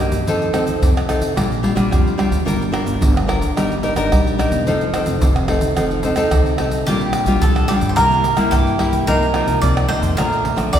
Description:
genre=samba and choro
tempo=109 BPM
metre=4/4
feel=straight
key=Bb major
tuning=A4 = 437 Hz
part: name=nylon-string guitar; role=accompaniment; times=0.0-10.8 s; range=F2 to Bb4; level=-19 LUFS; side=equal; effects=none
part: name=upright bass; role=bass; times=0.0-10.8 s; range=E1 to G2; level=-23 LUFS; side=equal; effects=none
part: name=tube shaker, surdo, pandeiro and tamborim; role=percussion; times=0.1-10.8 s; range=none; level=-19 LUFS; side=equal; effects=none
part: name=bowl-back mandolin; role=second line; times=6.9-10.8 s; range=G4 to D5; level=-19 LUFS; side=right 1 dB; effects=none
room=wet concert hall reverb, RT60 2.0 s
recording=recorded in a church or concert hall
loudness=-15 LUFS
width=side -9 dB against mid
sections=0.0-10.8 A section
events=none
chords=0.3 F7; 1.4 Bb6; 2.5 Gm7; 3.6 Ebmaj7/G; 4.7 F7; 6.9 Bb6; 8.0 C7; 9.1 F7sus4/C; 10.2 Bbmaj7

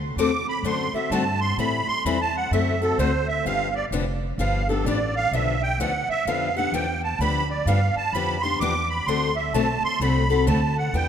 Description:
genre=acoustic string swing (jazz manouche)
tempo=128 BPM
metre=4/4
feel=swing 63% on 8ths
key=unclear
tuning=A4 = 440 Hz
part: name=upright bass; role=bass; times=0.0-11.1 s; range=F1 to A2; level=-26 LUFS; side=equal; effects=none
part: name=musette accordion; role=melody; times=0.2-11.1 s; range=A4 to D6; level=-24 LUFS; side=right 3 dB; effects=none
part: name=picked steel-string acoustic guitar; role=accompaniment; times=0.2-11.1 s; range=D3 to A4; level=-26 LUFS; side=left 6 dB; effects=none
room=moderate concert hall reverb, RT60 2.3 s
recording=minimal, uncompressed stereo recording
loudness=-21 LUFS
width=side -8 dB against mid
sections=0.0-11.1 A section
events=accordion solo 0.0-11.1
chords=0.0 D7; 1.6 Am7; 2.5 D7; 3.5 G7; 9.1 D7

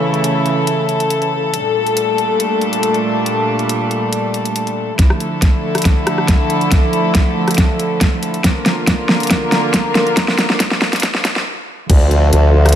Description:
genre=heavy wobble dubstep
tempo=139 BPM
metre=4/4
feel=half-time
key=D harmonic minor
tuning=A4 = 440 Hz
part: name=rich chamber string section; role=sustained chords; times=0.0-12.8 s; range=Bb2 to Bb4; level=-16 LUFS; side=equal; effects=sidechain pumping, low-pass filter
part: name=dubstep drum kit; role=drums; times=0.1-12.8 s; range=crash cymbal, hi-hat, rim click, snare drum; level=-17 LUFS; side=equal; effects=overdrive, small room ambience
part: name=electronic kick drum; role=drums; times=5.0-12.0 s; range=none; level=-14 LUFS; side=equal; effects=overdrive, small room ambience
part: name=formant-sweep wobble bass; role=bass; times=11.9-12.7 s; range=D2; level=-10 LUFS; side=equal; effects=chorus, overdrive
room=light reverb, digital ambience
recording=high-pass filter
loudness=-13 LUFS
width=side -10 dB against mid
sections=0.0-5.0 A section; 5.0-11.9 B section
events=build-up 5.0-11.9; drum fill 5.0-11.5; filter sweep 5.0-11.9; stop 11.5-11.9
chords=0.0 A; 1.5 Gmadd9; 5.0 Dmadd9; 8.4 Bb; 11.9 Dm

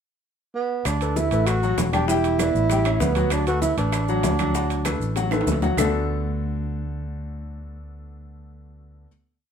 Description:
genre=Afro-Cuban jazz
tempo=195 BPM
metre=4/4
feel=straight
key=D major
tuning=A4 = 438 Hz
part: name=breathy tenor saxophone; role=melody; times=0.6-5.4 s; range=B3 to F#4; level=-24 LUFS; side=right 4 dB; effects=none
part: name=sustaining fretless electric bass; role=bass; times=0.9-9.1 s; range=E1 to D2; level=-25 LUFS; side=equal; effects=none
part: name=bongos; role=percussion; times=0.9-5.8 s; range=none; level=-31 LUFS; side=left 7 dB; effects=none
part: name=claves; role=percussion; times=0.9-5.9 s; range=none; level=-35 LUFS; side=right 6 dB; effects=none
part: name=congas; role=percussion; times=0.9-5.8 s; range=none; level=-32 LUFS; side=right 1 dB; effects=none
part: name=maracas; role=percussion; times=0.9-5.8 s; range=none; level=-36 LUFS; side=right 6 dB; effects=none
part: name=timbales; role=percussion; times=0.9-5.8 s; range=none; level=-32 LUFS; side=right 4 dB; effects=none
part: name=clear baby grand piano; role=accompaniment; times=1.0-9.1 s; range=D3 to G5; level=-27 LUFS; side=left 4 dB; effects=none
room=moderate studio reverb, RT60 0.9 s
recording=minimal, uncompressed stereo recording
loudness=-20 LUFS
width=side -7 dB against mid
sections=0.0-0.9 pickup bar; 0.9-5.8 A section; 5.8-8.2 final chord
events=drum fill 4.9-5.8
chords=0.0 N.C.; 0.9 D6; 2.1 Em7; 2.7 A9; 3.3 D6

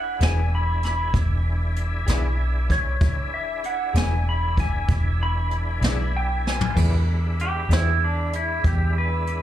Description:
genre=slow blues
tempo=64 BPM (dotted quarters)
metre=12/8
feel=straight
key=E mixolydian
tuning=A4 = 439 Hz
part: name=clean lap steel guitar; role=melody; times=0.0-9.4 s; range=D4 to B5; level=-27 LUFS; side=equal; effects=slapback echo
part: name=tonewheel organ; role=sustained chords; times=0.0-9.4 s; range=G#3 to D5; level=-32 LUFS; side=equal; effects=chorus vibrato, slow rotary speaker
part: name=vintage muted fingered electric bass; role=bass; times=0.0-9.4 s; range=E1 to E2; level=-22 LUFS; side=equal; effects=none
part: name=electric guitar through a small old amp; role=accompaniment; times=0.2-7.9 s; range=E3 to G#4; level=-34 LUFS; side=left 3 dB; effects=tremolo, slapback echo
part: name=jazz brush drum kit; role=drums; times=0.2-9.4 s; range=crash cymbal, hi-hat, kick drum, snare drum, toms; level=-24 LUFS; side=equal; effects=none
room=small room reverb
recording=live gig heard through the venue's PA, club reverb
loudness=-20 LUFS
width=side -12 dB against mid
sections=0.0-6.8 A section; 6.8-9.4 B section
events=electric slide guitar solo 0.0-6.8; drum fill 6.4-6.8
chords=0.0 E7

